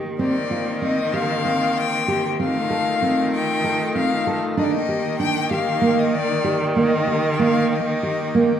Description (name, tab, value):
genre	contemporary instrumental, chamber music in an uneven meter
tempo	191 BPM (eighths)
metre	7/8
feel	straight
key	Eb lydian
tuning	A4 = 440 Hz
part	nylon-string guitar	arpeggios	0.0-8.5 s	Bb3 to A4	-22 LUFS	right 3 dB	none
part	clear cello	bass	0.0-8.6 s	Eb3	-26 LUFS	right 2 dB	none
part	warm violin	melody	0.2-8.6 s	D5 to G5	-24 LUFS	left 5 dB	none
part	pipe organ, full organ	sustained chords	0.2-8.6 s	Eb3 to G4	-27 LUFS	left 1 dB	none
room	wet concert hall reverb, RT60 1.7 s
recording	dark, warm production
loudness	-18 LUFS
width	side -9 dB against mid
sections	0.0-8.6 A section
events	none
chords	0.2 Bb69/Eb; 2.4 F7/Eb; 4.6 Eb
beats	| 0.18 0.50 0.82 1.13 1.45 1.76 2.08 | 2.39 2.70 3.01 3.32 3.64 3.95 4.26 | 4.57 4.88 5.19 5.50 5.82 6.13 6.45 | 6.76 7.08 7.39 7.71 8.03 8.35